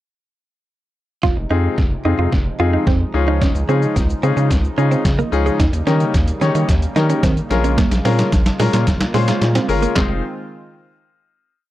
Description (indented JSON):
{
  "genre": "dance-pop",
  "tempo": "110 BPM",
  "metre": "4/4",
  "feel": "straight",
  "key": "F minor",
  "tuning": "A4 = 440 Hz",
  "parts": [
    { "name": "soft supersaw", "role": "sustained chords", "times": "1.2-10.2 s", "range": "C3 to F4", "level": "-26 LUFS", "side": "right 1 dB", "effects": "sidechain pumping" },
    { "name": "direct-recorded clean electric guitar", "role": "riff", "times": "1.2-10.1 s", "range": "Ab3 to F4", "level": "-22 LUFS", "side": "right 4 dB", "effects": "wide subtle chorus" },
    { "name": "round analog bass", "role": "bass", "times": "1.2-10.2 s", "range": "F1 to Eb3", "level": "-18 LUFS", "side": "equal", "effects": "sidechain pumping" },
    { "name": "trip hop sampler-style drum kit", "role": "drums", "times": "1.2-10.1 s", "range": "handclaps, hi-hat, kick drum, shaker, snare drum", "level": "-18 LUFS", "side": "equal", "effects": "overdrive" },
    { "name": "clear baby grand piano", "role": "accompaniment", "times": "1.5-10.2 s", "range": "C4 to Db5", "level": "-21 LUFS", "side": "left 7 dB", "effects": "sidechain pumping" }
  ],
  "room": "little or no reverb",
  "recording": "dry, close 1970s-style studio recording",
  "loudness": "-14 LUFS",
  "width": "side -14 dB against mid",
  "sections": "1.2-10.0 build; 10.0-11.7 final chord",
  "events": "build-up 1.2-10.0; drum fill 1.2-10.0",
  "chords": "1.2 Fm7; 3.1 Dbadd9; 5.6 Eb7; 7.5 Bbm7; 10.0 Fm7"
}